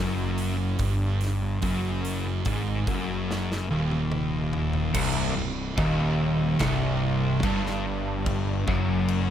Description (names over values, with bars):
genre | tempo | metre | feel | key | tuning
stoner and doom metal | 72 BPM | 4/4 | straight | unclear | A4 = 436 Hz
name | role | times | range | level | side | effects
thick fuzz guitar | riff | 0.0-9.3 s | C2 to Ab2 | -27 LUFS | left 4 dB | distortion
thick fuzz guitar | riff | 0.0-9.3 s | C2 to Ab2 | -30 LUFS | right 8 dB | distortion
fuzz fingered electric bass | bass | 0.0-9.3 s | C1 to Ab1 | -32 LUFS | equal | overdrive, tube saturation
big rock drum kit | drums | 0.4-9.3 s | crash cymbal, hi-hat, kick drum, snare drum, toms | -32 LUFS | equal | none
overdriven electric guitar | riff | 4.9-9.3 s | C2 to G2 | -31 LUFS | right 2 dB | none
room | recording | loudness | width
small room ambience | none | -24 LUFS | side -10 dB against mid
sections
0.0-5.0 A section; 5.0-9.3 B section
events
drum fill 3.3-5.0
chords
0.0 Cm (rootless); 5.0 Cm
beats
0.81 | 1.64 2.47 3.30 4.13 | 4.96 5.79 6.61 7.44 | 8.27 9.09